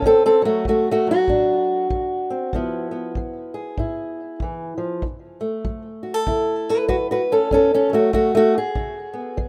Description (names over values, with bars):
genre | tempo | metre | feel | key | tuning
acoustic country blues, solo or duo | 96 BPM | 4/4 | swing 60% on 8ths | F# minor | A4 = 440 Hz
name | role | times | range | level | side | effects
fingerpicked old ladder-braced acoustic guitar | melody | 0.0-9.5 s | F#2 to B4 | -21 LUFS | equal | none
kick drum | drums | 0.0-9.5 s | none | -32 LUFS | equal | none
room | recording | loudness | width
small room ambience | rough home demo mix | -21 LUFS | mono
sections
0.0-9.5 A section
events
steel-string acoustic guitar solo 0.0-9.5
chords
0.0 D7; 2.5 C#7#9; 5.0 F#m7; 8.8 C#7(no3)